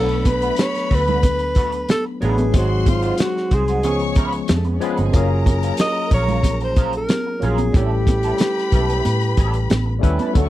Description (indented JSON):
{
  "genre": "lush 1970s-style soul",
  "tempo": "92 BPM",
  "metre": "4/4",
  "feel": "straight",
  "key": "unclear",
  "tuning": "A4 = 439 Hz",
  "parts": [
    { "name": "breathy alto saxophone", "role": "melody", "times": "0.0-10.0 s", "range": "E#4 to D#5", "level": "-22 LUFS", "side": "equal", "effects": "none" },
    { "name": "warm studio string section", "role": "second line", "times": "0.0-10.5 s", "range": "A3 to C#6", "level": "-29 LUFS", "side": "left 2 dB", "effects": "none" },
    { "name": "tine electric piano", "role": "accompaniment", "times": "0.0-10.5 s", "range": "E#3 to B4", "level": "-25 LUFS", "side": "left 2 dB", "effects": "medium stereo tremolo" },
    { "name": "electric guitar through a small old amp", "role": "riff", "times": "0.0-10.5 s", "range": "G3 to B#4", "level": "-29 LUFS", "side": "right 3 dB", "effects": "wah, analog chorus" },
    { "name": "vintage muted fingered electric bass", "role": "bass", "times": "0.0-10.5 s", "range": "F#1 to A2", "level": "-21 LUFS", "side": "equal", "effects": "none" },
    { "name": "warm soul drum kit", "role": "drums", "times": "0.1-10.5 s", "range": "hi-hat, kick drum, snare drum", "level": "-18 LUFS", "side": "equal", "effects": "none" },
    { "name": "congas", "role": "percussion", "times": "0.3-10.5 s", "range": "none", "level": "-26 LUFS", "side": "right 4 dB", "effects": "none" },
    { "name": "mellow French horn section", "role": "sustained chords", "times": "10.3-10.5 s", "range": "none", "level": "barely audible", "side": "none", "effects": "none" }
  ],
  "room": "little or no reverb",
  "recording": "dry, close 1970s-style studio recording",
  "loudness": "-16 LUFS",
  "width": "side -15 dB against mid",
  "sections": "0.0-10.5 A section",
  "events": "none",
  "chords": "0.0 Bm7; 2.5 G#7; 3.8 C#7; 5.1 F#maj9; 7.7 A7"
}